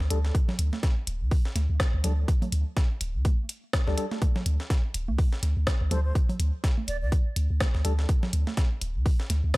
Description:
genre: minimal techno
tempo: 124 BPM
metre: 4/4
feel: swing 58% on 16ths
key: unclear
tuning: A4 = 439 Hz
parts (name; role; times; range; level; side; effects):
- punchy sub bass; bass; 0.0-9.5 s; D1 to D2; -26 LUFS; equal; sidechain pumping
- breakbeat sampler-style drum kit; drums; 0.0-9.6 s; hi-hat, snare drum; -39 LUFS; equal; sidechain pumping on hats, high-pass filter on hats, high-pass filter on snare
- percussive organ stab; stabs; 0.1-7.9 s; G3 to A4; -35 LUFS; left 3 dB; wide subtle chorus, tape echo
- minimal click drum kit; drums; 0.1-9.6 s; hi-hat, rim click; -32 LUFS; left 1 dB; none
- electronic kick drum; drums; 0.3-9.6 s; none; -24 LUFS; equal; none
- congas; percussion; 0.5-9.4 s; none; -37 LUFS; right 3 dB; tape echo
- breathy concert flute; melody; 5.9-7.1 s; C5 to D5; -38 LUFS; right 2 dB; tape echo
room: little or no reverb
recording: dry, gritty hardware recording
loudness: -24 LUFS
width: side -22 dB against mid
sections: 0.0-9.6 A section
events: none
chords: none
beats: | 0.35 0.83 1.31 1.80 | 2.28 2.77 3.25 3.73 | 4.22 4.70 5.19 5.67 | 6.15 6.64 7.12 7.61 | 8.09 8.57 9.06 9.54

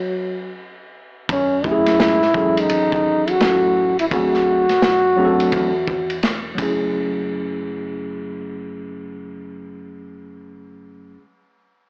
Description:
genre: hip hop, jazz-hop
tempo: 85 BPM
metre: 4/4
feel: swing 63% on 16ths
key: F# minor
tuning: A4 = 441 Hz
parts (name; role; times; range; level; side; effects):
- breathy trombone; melody; 0.0-6.2 s; F#3 to F#4; -16 LUFS; equal; none
- deep dub fingered electric bass; bass; 1.3-11.2 s; E1 to G#2; -33 LUFS; equal; tube saturation
- crunchy breakbeat drum kit; drums; 1.3-6.8 s; hi-hat, kick drum, ride cymbal, snare drum; -24 LUFS; equal; none
- mellow tine electric piano; accompaniment; 1.6-11.2 s; E3 to A4; -23 LUFS; equal; medium stereo tremolo
room: light reverb, small room reverb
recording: dry, gritty hardware recording, cassette tape, AM radio sound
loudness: -16 LUFS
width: side -34 dB against mid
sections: 0.0-1.3 A section; 1.3-6.9 B section; 6.9-9.8 C section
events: break 0.0-1.3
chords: 0.0 N.C.; 1.3 F#m9; 4.1 D7#11; 6.6 F#m9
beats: 0.58 | 1.29 1.99 2.70 3.40 | 4.11 4.82 5.52 6.23 | 6.93 7.64 8.35 9.05

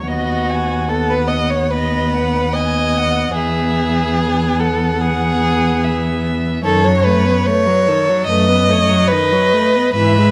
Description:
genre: classical, slow romantic movement for string quartet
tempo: 73 BPM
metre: 4/4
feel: rubato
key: unclear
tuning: A4 = 440 Hz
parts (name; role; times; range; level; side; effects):
- rich violin; melody; 0.0-10.3 s; A4 to G#5; -26 LUFS; equal; none
- rich viola; accompaniment; 0.0-10.3 s; D#3 to B3; -22 LUFS; equal; none
- warm cello; bass; 0.0-10.3 s; D#2 to G#2; -21 LUFS; equal; none
- warm violin; second line; 0.1-10.3 s; F#4 to D#5; -19 LUFS; equal; none
room: moderate recital hall reverb, RT60 1.7 s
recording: close, detailed microphones, vinyl crackle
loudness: -16 LUFS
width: mono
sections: 0.0-10.3 A section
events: none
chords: 0.1 B/D#; 3.4 E; 6.7 B7/F#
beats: | 0.07 0.89 1.71 2.54 | 3.36 4.18 5.01 5.84 | 6.65 7.47 8.28 9.10 | 9.94

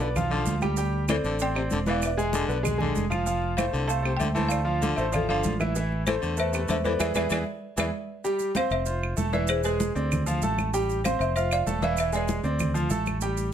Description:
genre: latin, salsa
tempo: 193 BPM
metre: 4/4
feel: straight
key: unclear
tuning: A4 = 440 Hz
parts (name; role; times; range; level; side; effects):
- folk marimba with hard mallets; melody; 0.0-13.0 s; G#4 to A5; -29 LUFS; left 1 dB; none
- growling baritone saxophone; second line; 0.0-7.8 s; C3 to E3; -32 LUFS; left 4 dB; none
- bright concert grand piano; accompaniment; 0.0-13.5 s; E3 to F6; -29 LUFS; right 2 dB; none
- fingered electric bass; bass; 0.0-13.5 s; E1 to E2; -29 LUFS; equal; none
- congas; percussion; 0.0-13.5 s; none; -32 LUFS; equal; none
- maracas; percussion; 0.0-13.5 s; none; -40 LUFS; right 8 dB; none
- claves; percussion; 0.2-13.2 s; none; -36 LUFS; right 4 dB; none
room: light reverb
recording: none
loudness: -24 LUFS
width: side -9 dB against mid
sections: 0.0-8.2 A section; 8.2-13.5 B section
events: band accent 7.0-8.2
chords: 0.0 G7; 0.8 D7sus4; 2.0 E7; 3.3 Fmaj7; 4.5 Dm7; 5.8 Amadd9; 7.0 E7; 8.2 Cadd11; 8.9 Fmaj7; 9.5 E7; 10.1 Dm7; 10.7 Am7; 11.4 Fmaj7; 12.0 E7; 12.6 Dm7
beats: 0.15 0.47 | 0.78 1.09 1.40 1.71 | 2.02 2.33 2.64 2.96 | 3.27 3.58 3.89 4.20 | 4.51 4.82 5.13 5.44 | 5.75 6.07 6.38 6.69 | 7.00 7.31 7.62 7.93 | 8.24 8.55 8.87 9.18 | 9.49 9.80 10.11 10.42 | 10.73 11.04 11.36 11.67 | 11.98 12.29 12.60 12.91 | 13.22

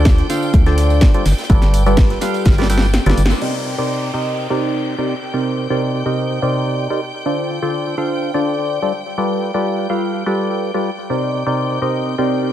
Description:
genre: piano house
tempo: 125 BPM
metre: 4/4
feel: straight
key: C dorian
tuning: A4 = 436 Hz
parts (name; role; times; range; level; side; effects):
- rich studio string section; sustained chords; 0.0-12.5 s; G5 to G6; -30 LUFS; right 1 dB; sidechain pumping
- percussive organ stab; riff; 0.0-12.5 s; C3 to G5; -18 LUFS; equal; chorus, phaser, sidechain pumping, analog delay
- organ-like FM bass; bass; 0.0-3.3 s; G1 to D2; -15 LUFS; equal; tube saturation, sidechain pumping
- electronic kick drum; drums; 0.1-2.6 s; none; -12 LUFS; equal; none
- house drum kit; drums; 0.1-3.5 s; crash cymbal, hi-hat, snare drum; -22 LUFS; equal; analog delay
- tight metal drum kit; drums; 0.1-3.4 s; hi-hat, snare drum; -34 LUFS; left 1 dB; none
- tambourine; percussion; 0.1-3.4 s; none; -35 LUFS; right 4 dB; none
- downlifter; sound effects; 3.4-7.3 s; none; -33 LUFS; equal; none
room: light reverb, studio ambience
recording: echo-heavy mix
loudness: -15 LUFS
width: side -11 dB against mid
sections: 0.0-3.4 A section; 3.4-12.5 B section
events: drum fill 2.5-3.4; kick drops out 2.9-3.4; band accent 3.3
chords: 0.0 Dm7; 1.3 G9; 3.4 Cm9; 7.0 Dm7; 8.9 G9; 11.1 Cm9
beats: 0.06 0.54 1.02 | 1.50 1.98 2.46 2.94 | 3.42 3.90 4.38 4.86 | 5.34 5.82 6.30 6.78 | 7.26 7.74 8.22 8.70 | 9.18 9.66 10.14 10.62 | 11.10 11.58 12.06

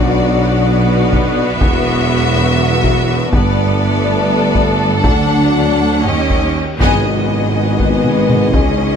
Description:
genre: cinematic, epic orchestral film score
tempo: 244 BPM (eighths)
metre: 7/8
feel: straight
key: B minor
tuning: A4 = 439 Hz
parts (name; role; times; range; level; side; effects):
- clear studio violin section; melody; 0.0-9.0 s; D5 to F#5; -21 LUFS; left 4 dB; none
- warm symphonic violin section; second line; 0.0-9.0 s; F#4 to A4; -21 LUFS; left 4 dB; none
- rich symphonic viola section; accompaniment; 0.0-9.0 s; B3 to D4; -21 LUFS; right 2 dB; none
- mellow French horn section; sustained chords; 0.0-9.0 s; F#3 to D#4; -20 LUFS; left 5 dB; none
- dark symphonic double bass section; bass; 0.0-9.0 s; E1 to D#2; -21 LUFS; right 4 dB; none
- dark tuba; bass; 0.0-9.0 s; E1 to D#2; -19 LUFS; right 4 dB; none
- rich symphonic cello section; bass; 0.0-9.0 s; C#2 to B2; -21 LUFS; right 2 dB; none
- timpani; percussion; 0.0-0.6 s; B2; -26 LUFS; left 1 dB; none
- solo taiko drums; drums; 1.1-9.0 s; none; -18 LUFS; left 1 dB; none
- cymbal swell and tam-tam; percussion; 3.3-8.7 s; none; -26 LUFS; left 3 dB; none
room: light reverb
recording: close, detailed microphones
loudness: -11 LUFS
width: side -7 dB against mid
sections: 0.0-6.8 A section; 6.8-9.0 B section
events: band accent 6.8-7.3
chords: 0.0 Bm; 1.6 Esus2; 3.3 Gadd9; 5.0 D; 6.0 D#7; 6.8 G#m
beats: 0.15 0.39 0.64 0.88 1.12 1.37 | 1.61 1.86 2.10 2.35 2.60 2.84 3.09 | 3.33 3.58 3.82 4.07 4.31 4.56 4.80 | 5.05 5.30 5.55 5.80 6.05 6.30 6.55 | 6.80 7.05 7.30 7.54 7.79 8.04 8.28 | 8.53 8.78

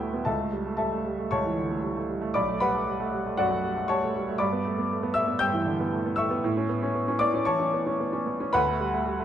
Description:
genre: classical, virtuoso piano study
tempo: 116 BPM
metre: 4/4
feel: rubato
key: unclear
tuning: A4 = 440 Hz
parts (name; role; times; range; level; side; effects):
- clear baby grand piano; solo; 0.0-9.2 s; B1 to G6; -24 LUFS; equal; none
room: moderate recital hall reverb, RT60 1.5 s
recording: dark, warm production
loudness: -24 LUFS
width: side -10 dB against mid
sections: 0.0-9.2 A section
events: none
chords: 0.3 A/C#; 2.4 Bm7; 4.4 Em7/G; 6.4 A; 8.5 D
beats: | 0.26 0.79 1.32 1.84 | 2.36 2.87 3.38 3.90 | 4.41 4.91 5.41 5.92 | 6.44 6.95 7.47 7.99 | 8.53 9.06

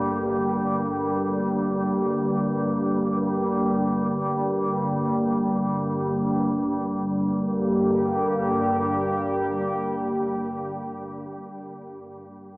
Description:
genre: dark ambient drone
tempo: free time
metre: none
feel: none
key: G minor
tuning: A4 = 435 Hz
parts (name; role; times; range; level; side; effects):
- sweeping resonant pad; sustained chords; 0.0-10.9 s; D3 to G4; -24 LUFS; equal; chorus
- organ-like drone; drone; 0.0-10.3 s; G1 to G2; -27 LUFS; equal; ensemble chorus, built-in reverb
- bronze singing bowl; texture; 0.0-6.5 s; none; barely audible; none; none
room: wet huge ambient reverb, RT60 7.5 s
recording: small speaker sound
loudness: -22 LUFS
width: side -24 dB against mid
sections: 0.0-6.5 A section; 6.5-11.2 B section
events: none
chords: 0.0 Gm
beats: free time

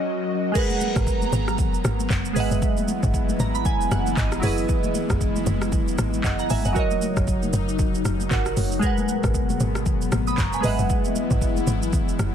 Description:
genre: amapiano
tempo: 116 BPM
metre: 4/4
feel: swing 58% on 16ths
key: G# minor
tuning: A4 = 440 Hz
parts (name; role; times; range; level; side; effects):
- glassy digital keys; accompaniment; 0.0-12.3 s; F#3 to D#6; -26 LUFS; right 3 dB; chorus
- airy breathy pad; sustained chords; 0.0-12.3 s; B2 to A#5; -28 LUFS; left 3 dB; chorus, sidechain pumping
- afro-pop drum kit; drums; 0.6-12.3 s; crash cymbal, handclaps, hi-hat, kick drum, rim click, shaker; -25 LUFS; equal; none
- congas; percussion; 0.7-12.3 s; none; -33 LUFS; left 4 dB; none
- tight log drum bass; bass; 1.0-12.3 s; F#1 to G#1; -25 LUFS; equal; none
room: little or no reverb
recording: dense, heavily limited modern master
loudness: -20 LUFS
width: side -9 dB against mid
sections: 0.6-12.3 A section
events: break 0.0-0.6; drop 0.6-12.3; synth keys fill 3.1-4.7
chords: 0.0 D#m7/F#; 0.6 G#m9; 2.4 F#13sus4; 6.8 D#m7/F#; 8.8 G#m9; 10.6 F#13sus4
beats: 0.04 | 0.55 1.07 1.59 2.10 | 2.62 3.14 3.66 4.17 | 4.69 5.21 5.72 6.24 | 6.76 7.28 7.79 8.31 | 8.83 9.35 9.86 10.38 | 10.90 11.41 11.93

